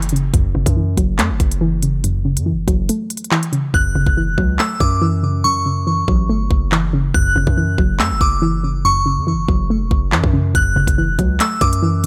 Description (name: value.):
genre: hip hop, drill.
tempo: 141 BPM.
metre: 4/4.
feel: half-time.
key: F# minor.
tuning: A4 = 440 Hz.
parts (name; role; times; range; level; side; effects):
soft round pluck; accompaniment; 0.0-12.1 s; F#2 to A3; -22 LUFS; equal; chorus, low-pass filter.
hard-hitting 808-style bass; bass; 0.0-12.1 s; E1 to F#2; -22 LUFS; equal; none.
drill drum kit; drums; 0.0-12.1 s; handclaps, hi-hat, kick drum; -21 LUFS; equal; none.
glassy synth bell; second line; 3.7-11.8 s; C#6 to F#6; -22 LUFS; equal; chorus, delay.
room: little or no reverb.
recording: none.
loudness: -17 LUFS.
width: mono.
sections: 0.0-12.1 A section.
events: kick muted 2.9-3.7; hi-hats muted 3.7-10.5.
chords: 0.0 F#m7.